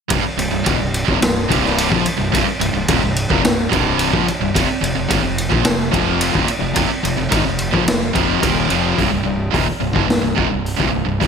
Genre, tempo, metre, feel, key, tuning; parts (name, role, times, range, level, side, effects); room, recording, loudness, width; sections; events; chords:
hard rock; 108 BPM; 4/4; straight; A4 = 440 Hz
high-gain distorted guitar; riff; 0.1-11.3 s; C2 to F3; -20 LUFS; right 12 dB; distortion
overdriven semi-hollow guitar; riff; 0.1-11.3 s; C2 to F3; -22 LUFS; left 12 dB; analog chorus
fuzz fingered electric bass; bass; 0.1-11.3 s; C1 to Bb1; -24 LUFS; equal; overdrive
raw garage drum kit; drums; 0.1-11.3 s; hi-hat, kick drum, ride cymbal, snare drum; -19 LUFS; equal; gated reverb
light reverb, small room ambience; bright 1980s-style digital production; -15 LUFS; side -6 dB against mid
0.1-9.0 A section; 9.0-11.3 B section
0.1 C5; 4.5 F5; 9.0 C5